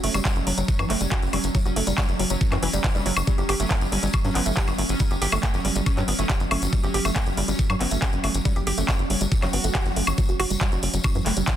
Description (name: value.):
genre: psychedelic trance.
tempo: 139 BPM.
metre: 4/4.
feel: straight.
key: unclear.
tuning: A4 = 440 Hz.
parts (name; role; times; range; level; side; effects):
pulsing gated texture; sustained chords; 0.0-11.6 s; F#3 to C#4; -30 LUFS; right 2 dB; chorus, built-in reverb, sidechain pumping.
woody wave-folded pluck; riff; 0.0-11.5 s; E3 to G4; -30 LUFS; right 1 dB; chorus, auto-pan, sidechain pumping, tape echo.
tight sequencer bass; bass; 0.0-11.4 s; F#1 to G2; -26 LUFS; equal; none.
drum and bass drum kit; drums; 0.0-11.6 s; handclaps, hi-hat, woodblock; -27 LUFS; left 1 dB; none.
tambourine; percussion; 0.1-11.6 s; none; -35 LUFS; left 4 dB; none.
electronic kick drum; drums; 0.3-11.6 s; none; -23 LUFS; equal; none.
swell; sound effects; 9.5-10.2 s; none; -35 LUFS; equal; none.
room: light reverb.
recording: dense, heavily limited modern master.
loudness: -20 LUFS.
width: side -11 dB against mid.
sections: 0.0-11.6 A section.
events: swell 9.5-10.2.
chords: 0.0 F#5; 3.3 Gmaj7(b5, no3); 10.2 F#5.